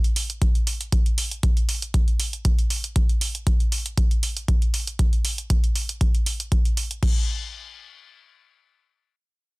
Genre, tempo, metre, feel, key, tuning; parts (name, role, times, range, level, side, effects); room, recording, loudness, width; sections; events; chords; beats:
acid house; 118 BPM; 4/4; swing 54% on 16ths
punchy analog drum machine; drums; 0.0-7.1 s; crash cymbal, hi-hat; -28 LUFS; right 2 dB
electronic kick drum; drums; 0.4-7.1 s; -21 LUFS; equal; overdrive
little or no reverb; dense, heavily limited modern master; -20 LUFS; side -26 dB against mid
0.0-7.0 A section; 7.0-9.6 B section
0.42 | 0.92 1.43 1.94 2.45 | 2.96 3.47 3.98 4.48 | 4.99 5.50 6.01 6.52 | 7.03